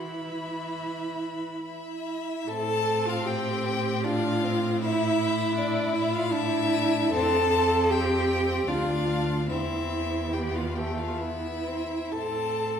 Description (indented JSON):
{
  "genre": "classical, slow romantic movement for string quartet",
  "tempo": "61-82 BPM",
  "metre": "3/4",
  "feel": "rubato",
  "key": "A minor",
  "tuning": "A4 = 440 Hz",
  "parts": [
    { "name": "clear violin", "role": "melody", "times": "0.0-12.8 s", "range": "D5 to A5", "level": "-31 LUFS", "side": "left 7 dB", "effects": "none" },
    { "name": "clear violin", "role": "second line", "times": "0.0-12.8 s", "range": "A3 to B5", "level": "-32 LUFS", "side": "left 2 dB", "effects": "none" },
    { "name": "clear viola", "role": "accompaniment", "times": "0.0-12.8 s", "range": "E3 to A4", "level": "-28 LUFS", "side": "right 2 dB", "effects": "none" },
    { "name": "clear cello", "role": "bass", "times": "0.0-12.8 s", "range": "D2 to E4", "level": "-31 LUFS", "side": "right 2 dB", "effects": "none" }
  ],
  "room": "wet recital hall reverb, RT60 1.5 s",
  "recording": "heard from further back in the room",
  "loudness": "-24 LUFS",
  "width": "side -8 dB against mid",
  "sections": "0.0-2.5 A section; 2.5-12.8 B section",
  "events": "none",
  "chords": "0.0 E5; 2.5 Am; 4.8 Asus4; 7.1 F; 8.7 Dm; 9.5 Am/E; 11.2 E5; 12.1 Am"
}